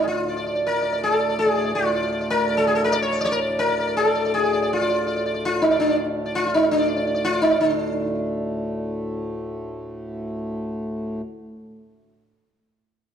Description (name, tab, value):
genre	indian classical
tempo	165 BPM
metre	4/4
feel	straight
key	D raga todi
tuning	A4 = 440 Hz
part	sitar	melody	0.0-9.0 s	D4 to D5	-20 LUFS	equal	none
part	hand-pumped harmonium	drone	0.0-11.2 s	D2 to A2	-29 LUFS	equal	none
room	wet recital hall reverb, RT60 1.8 s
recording	dark, warm production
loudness	-20 LUFS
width	side -8 dB against mid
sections	0.0-7.6 A section; 7.6-10.4 B section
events	speeding up 0.0-10.4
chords	none